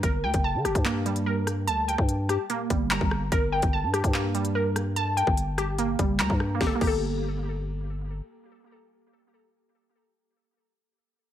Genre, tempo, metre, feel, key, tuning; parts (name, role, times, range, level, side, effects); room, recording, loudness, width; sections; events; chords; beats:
hip hop, drill; 146 BPM; 4/4; half-time; G minor; A4 = 441 Hz
glassy wavetable pluck; arpeggios; 0.0-10.6 s; G3 to Bb5; -27 LUFS; right 1 dB; chorus, low-pass filter, digital delay
growling 808-style bass; bass; 0.0-8.2 s; F#1 to D3; -29 LUFS; equal
drill drum kit; drums; 0.0-6.9 s; crash cymbal, handclaps, hi-hat, kick drum, rim click, snare drum; -27 LUFS; left 1 dB
light reverb; -24 LUFS; side -11 dB against mid
0.0-6.6 A section; 6.6-9.9 B section
0.0 Gmadd9
| 0.03 0.44 0.85 1.26 | 1.68 2.09 2.50 2.91 | 3.32 3.73 4.14 4.55 | 4.96 5.37 5.79 6.20 | 6.61 7.02 7.43 7.84 | 8.25 8.66 9.07 9.48